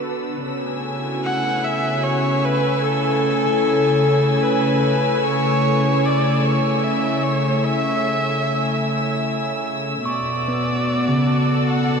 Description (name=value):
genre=ambient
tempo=75 BPM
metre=3/4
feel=straight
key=unclear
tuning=A4 = 439 Hz
part: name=warm studio string section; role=sustained chords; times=0.0-12.0 s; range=B2 to G#5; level=-20 LUFS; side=equal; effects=none
part: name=rich chamber violin section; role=texture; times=0.0-12.0 s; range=E6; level=-31 LUFS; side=left 1 dB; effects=none
part: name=rich electric violin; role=melody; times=1.2-12.0 s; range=A4 to F#5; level=-22 LUFS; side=left 1 dB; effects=diffuse ambient delay
part: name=bell-like tine electric piano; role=arpeggios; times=10.1-12.0 s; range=C#3 to C#6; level=-21 LUFS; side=equal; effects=phaser, diffuse ambient delay
room=wet huge ambient reverb, RT60 8.2 s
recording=dark, warm production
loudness=-17 LUFS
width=side -6 dB against mid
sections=0.4-12.0 A section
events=none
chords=0.4 Amaj7; 10.0 Bm7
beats=| 0.44 1.24 2.04 | 2.84 3.64 4.44 | 5.24 6.04 6.84 | 7.64 8.44 9.24 | 10.04 10.84 11.64